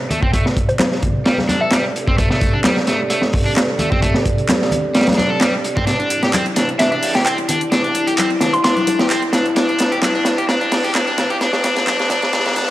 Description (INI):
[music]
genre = breakbeat, breaks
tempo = 130 BPM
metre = 4/4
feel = swing 54% on 16ths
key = A minor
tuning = A4 = 440 Hz
[part]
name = dark analog pad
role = sustained chords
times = 0.0-12.7 s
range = C4 to D5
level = -23 LUFS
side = equal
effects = chorus, vintage 12-bit sampler grit, sidechain pumping
[part]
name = crunchy overdriven guitar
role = riff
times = 0.1-12.7 s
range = G3 to A4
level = -20 LUFS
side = equal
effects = low-pass filter, analog delay
[part]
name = crunchy breakbeat drum kit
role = drums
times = 0.1-12.7 s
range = hi-hat, kick drum, snare drum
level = -18 LUFS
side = equal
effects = none
[part]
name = congas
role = percussion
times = 0.1-12.7 s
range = none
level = -25 LUFS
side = left 2 dB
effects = none
[part]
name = hollow square pluck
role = melody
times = 0.7-2.3, 6.8-8.7 s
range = C5 to C6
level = -22 LUFS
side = equal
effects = chorus, telephone sound
[part]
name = house drum kit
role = drums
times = 0.8-12.7 s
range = handclaps, hi-hat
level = -26 LUFS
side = equal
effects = high-pass filter on snare, high-pass filter on hats
[part]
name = riser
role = sound effects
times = 8.3-12.7 s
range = none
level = -32 LUFS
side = equal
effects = none
[sound]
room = light reverb, small room ambience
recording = dry, gritty hardware recording, high-pass filter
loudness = -14 LUFS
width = side -15 dB against mid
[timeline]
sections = 0.0-12.7 A section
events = build-up 0.0-12.7; filter sweep on analog synth pad 0.0-12.7; filter sweep on synth pluck 0.0-12.7; filter sweep 0.0-12.7; drum fill 5.9-12.7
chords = 0.0 Am11; 5.9 D9sus4